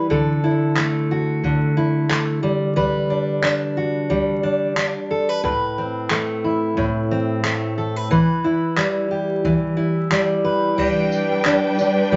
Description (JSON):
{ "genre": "acoustic pop", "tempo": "90 BPM", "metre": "4/4", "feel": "swing 55% on 16ths", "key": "G major", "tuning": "A4 = 439 Hz", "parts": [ { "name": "fingerpicked steel-string acoustic guitar", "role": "accompaniment", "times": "0.0-12.2 s", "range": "A2 to B4", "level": "-21 LUFS", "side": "equal", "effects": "none" }, { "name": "jazz brush drum kit", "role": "drums", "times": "0.1-12.2 s", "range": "crash cymbal, handclaps, kick drum, tambourine", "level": "-28 LUFS", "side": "equal", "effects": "none" }, { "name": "warm studio string section", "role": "sustained chords", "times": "10.8-12.2 s", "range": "G3 to G5", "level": "-23 LUFS", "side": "equal", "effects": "none" } ], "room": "moderate studio reverb, RT60 0.6 s", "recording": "vinyl crackle, nothing above 7.7 kHz", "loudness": "-20 LUFS", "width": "mono", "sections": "0.0-10.8 A section; 10.8-12.2 B section", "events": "none", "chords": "0.1 Dadd9; 2.4 Gmaj7; 5.4 Amadd9; 8.1 Em; 10.8 G", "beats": "| 0.10 0.77 1.44 2.10 | 2.77 3.44 4.11 4.77 | 5.44 6.11 6.78 7.44 | 8.11 8.78 9.45 10.12 | 10.78 11.45 12.12" }